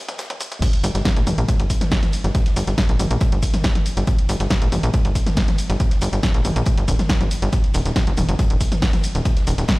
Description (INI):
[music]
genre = driving peak-time techno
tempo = 139 BPM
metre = 4/4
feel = straight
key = G harmonic minor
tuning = A4 = 438 Hz
[part]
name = tight sequencer bass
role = bass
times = 0.1-9.7 s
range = D1 to Bb1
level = -20 LUFS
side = equal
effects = sidechain pumping
[part]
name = electronic kick drum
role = drums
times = 0.1-9.8 s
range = none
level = -19 LUFS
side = equal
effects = none
[part]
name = oversized low-tuned drum kit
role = drums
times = 0.1-9.8 s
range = hi-hat, snare drum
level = -36 LUFS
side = left 2 dB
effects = high-pass filter on hats, high-pass filter on snare, high-pass filter on room
[part]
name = punchy analog drum machine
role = drums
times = 0.1-9.8 s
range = crash cymbal, hi-hat, shaker, snare drum, toms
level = -24 LUFS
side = equal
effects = sidechain pumping on hats, sidechain pumping on perc, sidechain pumping on toms, sidechain pumping on cymbals
[sound]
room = little or no reverb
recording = played on a big sound system in a bare room, stone room reverb, high-pass filter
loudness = -17 LUFS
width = side -21 dB against mid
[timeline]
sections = 0.6-9.8 A section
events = drum fill 0.0-0.6; drop 0.6-9.8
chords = none